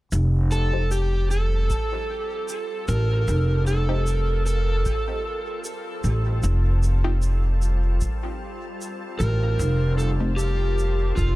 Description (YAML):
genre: ambient dub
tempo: 76 BPM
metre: 4/4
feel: swing 54% on 16ths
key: F mixolydian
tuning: A4 = 440 Hz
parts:
  - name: soft additive organ-like pad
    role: sustained chords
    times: 1.2-11.4 s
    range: G3 to A5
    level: -37 LUFS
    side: left 2 dB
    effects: ensemble chorus, built-in reverb
  - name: upright bass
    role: bass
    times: 0.1-11.4 s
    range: F1 to A1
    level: -20 LUFS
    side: equal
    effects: none
  - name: shaker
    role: drums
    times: 0.1-11.3 s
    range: none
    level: -39 LUFS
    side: right 1 dB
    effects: none
  - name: overdriven slide guitar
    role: melody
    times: 0.5-11.4 s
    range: F4 to Bb4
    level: -29 LUFS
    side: right 2 dB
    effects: dub echo
  - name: filtered dub chord stab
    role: stabs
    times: 0.7-10.4 s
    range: F3 to G4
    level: -37 LUFS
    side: left 1 dB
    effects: none
  - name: electronic kick drum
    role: drums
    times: 1.7-11.3 s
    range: none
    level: -29 LUFS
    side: equal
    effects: none
room: little or no reverb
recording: none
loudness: -21 LUFS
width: side -18 dB against mid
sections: 0.1-11.4 A section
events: fade-in on ambient pad 0.1-11.4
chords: 0.1 F7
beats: | 0.12 0.91 1.70 2.49 | 3.28 4.07 4.86 5.65 | 6.44 7.23 8.02 8.81 | 9.60 10.39 11.18